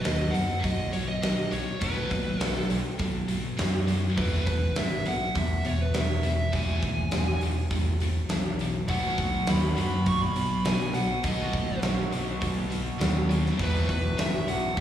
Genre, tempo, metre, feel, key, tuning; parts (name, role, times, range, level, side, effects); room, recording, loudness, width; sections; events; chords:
hard rock; 102 BPM; 4/4; straight; E major; A4 = 440 Hz
smooth overdriven lead guitar; melody; 0.0-14.8 s; B4 to C#6; -32 LUFS; right 1 dB; slapback echo, analog delay
high-gain distorted guitar; riff; 0.0-14.8 s; E2 to B3; -32 LUFS; left 1 dB; distortion, slapback echo
huge arena drum kit; drums; 0.0-14.8 s; hi-hat, kick drum, snare drum; -30 LUFS; equal
picked electric bass; bass; 0.1-14.8 s; E1 to F#2; -29 LUFS; equal
distorted electric guitar; riff; 8.9-14.8 s; E2 to B3; -34 LUFS; right 1 dB; distortion, slapback echo
light reverb, small room ambience; live gig heard through the venue's PA, recital hall reverb; -24 LUFS; side -10 dB against mid
0.0-14.8 A section
0.0 B; 4.2 E5; 8.9 B; 13.6 E